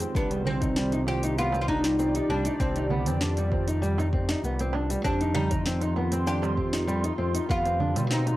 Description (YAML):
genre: organic downtempo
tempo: 98 BPM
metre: 4/4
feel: straight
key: C harmonic minor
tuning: A4 = 440 Hz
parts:
  - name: muted felt-like synth keys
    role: accompaniment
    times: 0.0-8.4 s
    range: C3 to D5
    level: -38 LUFS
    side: right 6 dB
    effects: none
  - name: airy breathy pad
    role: sustained chords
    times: 0.0-8.4 s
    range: Eb3 to C6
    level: -35 LUFS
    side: equal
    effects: chorus, sidechain pumping, cassette tape, plate reverb
  - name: nylon-string guitar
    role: arpeggios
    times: 0.0-8.4 s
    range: G3 to Eb4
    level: -31 LUFS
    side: equal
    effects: cassette tape, tape echo, plate reverb
  - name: smooth gliding synth bass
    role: bass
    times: 0.0-8.4 s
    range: C2 to B2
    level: -29 LUFS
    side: equal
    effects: tube saturation, sidechain pumping
  - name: afro-pop drum kit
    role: drums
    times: 0.0-8.4 s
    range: cabasa, hi-hat, snare drum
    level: -34 LUFS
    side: equal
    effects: cassette tape
  - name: darbuka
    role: percussion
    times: 0.0-8.4 s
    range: none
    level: -34 LUFS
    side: right 6 dB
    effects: none
  - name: electronic kick drum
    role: drums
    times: 0.1-7.6 s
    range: none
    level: -30 LUFS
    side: equal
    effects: cassette tape
  - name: oud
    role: melody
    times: 0.2-8.4 s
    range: B3 to G4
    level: -30 LUFS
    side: equal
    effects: cassette tape, tape echo, plate reverb
room: light reverb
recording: home recording on cassette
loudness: -24 LUFS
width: side -16 dB against mid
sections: 0.0-8.4 A section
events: none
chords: 0.1 Cmadd9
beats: | 0.15 0.76 1.37 1.98 | 2.60 3.21 3.82 4.43 | 5.04 5.66 6.27 6.88 | 7.49 8.11